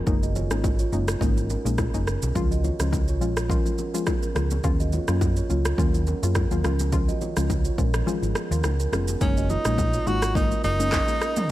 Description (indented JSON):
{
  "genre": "afrobeats",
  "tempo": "105 BPM",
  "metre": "4/4",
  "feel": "swing 55% on 16ths",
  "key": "F# major",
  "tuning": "A4 = 440 Hz",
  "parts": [
    { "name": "soft round pluck", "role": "accompaniment", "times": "0.0-11.3 s", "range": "E#3 to E#4", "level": "-29 LUFS", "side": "left 3 dB", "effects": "chorus" },
    { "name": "hollow-body short-scale fingered electric bass", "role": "bass", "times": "0.1-11.0 s", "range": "E#1 to F#2", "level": "-25 LUFS", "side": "equal", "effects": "none" },
    { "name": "deep house drum kit", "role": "drums", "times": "0.1-11.5 s", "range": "handclaps, kick drum, rim click, shaker, toms", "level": "-26 LUFS", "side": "equal", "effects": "overdrive" },
    { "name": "congas and bongos", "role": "percussion", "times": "0.1-11.5 s", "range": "none", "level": "-34 LUFS", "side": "left 5 dB", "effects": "none" },
    { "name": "kalimba", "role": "riff", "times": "0.2-11.3 s", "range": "B3 to D#5", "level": "-32 LUFS", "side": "right 4 dB", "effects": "tape echo" },
    { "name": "breathy tenor saxophone", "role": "melody", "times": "9.2-11.5 s", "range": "C#4 to F#4", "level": "-26 LUFS", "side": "equal", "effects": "none" }
  ],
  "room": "small room ambience",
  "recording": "none",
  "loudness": "-21 LUFS",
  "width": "side -15 dB against mid",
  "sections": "0.0-9.2 A section; 9.2-11.5 B section",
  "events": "kick muted 8.1-9.2",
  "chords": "0.1 F#6; 2.4 C#; 4.6 D#m7; 6.6 C#; 9.2 F#6"
}